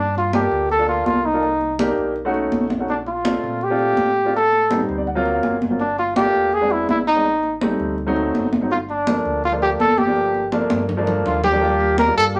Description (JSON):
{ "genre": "Afro-Cuban jazz", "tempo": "165 BPM", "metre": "4/4", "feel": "straight", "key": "G minor", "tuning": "A4 = 440 Hz", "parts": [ { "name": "dark trumpet", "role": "melody", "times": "0.0-12.4 s", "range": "D4 to Bb4", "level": "-20 LUFS", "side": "equal", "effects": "none" }, { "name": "sub bass with octave", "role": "bass", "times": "0.0-12.4 s", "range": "E1 to Bb2", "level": "-32 LUFS", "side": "equal", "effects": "none" }, { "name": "congas", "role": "percussion", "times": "0.2-12.4 s", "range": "none", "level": "-27 LUFS", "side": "equal", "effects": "none" }, { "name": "warm concert grand piano", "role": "accompaniment", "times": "0.3-12.4 s", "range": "F3 to Ab5", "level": "-25 LUFS", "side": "equal", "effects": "none" } ], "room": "wet studio reverb, RT60 0.5 s", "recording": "none", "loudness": "-19 LUFS", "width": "mono", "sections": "0.0-11.6 A section", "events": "grand piano fill 4.7-5.8; drum fill 10.5-11.6", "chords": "0.0 Gm9; 1.4 Cm9; 2.2 B9; 2.9 Bbmaj9; 4.3 Am7b5; 5.1 D7alt; 5.8 Gm9; 6.5 E7b13; 7.2 Am7b5; 8.0 D7b9; 8.7 Gm9; 11.6 Ebmaj9", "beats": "0.33 0.70 1.06 | 1.43 1.79 2.16 2.52 | 2.88 3.25 3.61 3.98 | 4.34 4.70 5.07 5.43 | 5.79 6.16 6.52 6.89 | 7.25 7.61 7.98 8.34 | 8.71 9.07 9.43 9.80 | 10.16 10.53 10.89 11.25 | 11.62 11.98 12.35" }